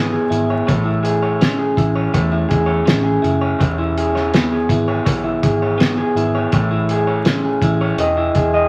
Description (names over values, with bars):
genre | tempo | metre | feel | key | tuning
indie pop, bedroom pop | 82 BPM | 4/4 | straight | E major | A4 = 440 Hz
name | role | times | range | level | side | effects
electric guitar through a small old amp | accompaniment | 0.0-8.7 s | E3 to D#5 | -20 LUFS | equal | warbly pitch drift
vintage muted picked electric bass | bass | 0.0-8.6 s | E1 to E2 | -24 LUFS | equal | none
cloth-damped thuddy drum kit | drums | 0.3-8.5 s | hi-hat, kick drum, snare drum | -21 LUFS | equal | none
room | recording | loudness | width
moderate large studio reverb, RT60 1.0 s | vinyl crackle | -17 LUFS | mono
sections
0.0-8.7 A section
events
none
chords
0.0 E6; 0.7 Amaj7; 3.6 E6; 6.5 Amaj7; 8.0 Emaj7